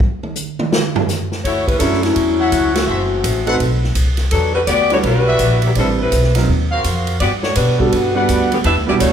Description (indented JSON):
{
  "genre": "jazz, big band swing",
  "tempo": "167 BPM",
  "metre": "4/4",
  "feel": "swing 64% on 8ths",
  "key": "D major",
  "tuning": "A4 = 440 Hz",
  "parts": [
    { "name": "swinging big-band drum kit", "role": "drums", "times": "0.0-9.1 s", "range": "hi-hat, kick drum, ride cymbal, snare drum, toms", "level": "-21 LUFS", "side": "right 1 dB", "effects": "none" },
    { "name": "mellow saxophone section", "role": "melody", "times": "1.4-9.1 s", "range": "D3 to E5", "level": "-17 LUFS", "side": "left 2 dB", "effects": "none" },
    { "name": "upright bass", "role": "bass", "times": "1.4-9.1 s", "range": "F#1 to B2", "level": "-18 LUFS", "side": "equal", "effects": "none" },
    { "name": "warm concert grand piano", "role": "accompaniment", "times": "1.8-9.1 s", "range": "F#3 to B4", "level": "-20 LUFS", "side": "right 5 dB", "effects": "none" },
    { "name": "clear trumpet section", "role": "stabs", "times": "2.4-8.6 s", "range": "E4 to F#5", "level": "-22 LUFS", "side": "left 1 dB", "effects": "none" }
  ],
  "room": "moderate recital hall reverb, RT60 1.4 s",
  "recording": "recorded in a church or concert hall",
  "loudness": "-14 LUFS",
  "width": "side -8 dB against mid",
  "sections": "0.0-1.4 A section; 1.4-9.1 B section",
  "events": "drum solo 0.0-1.4; band accent 2.7",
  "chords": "0.0 N.C.; 1.4 Dmaj9; 2.9 F#m7b5; 3.6 N.C.; 4.3 Em9; 5.8 Am11; 6.5 Ebm69; 7.2 Gmaj7"
}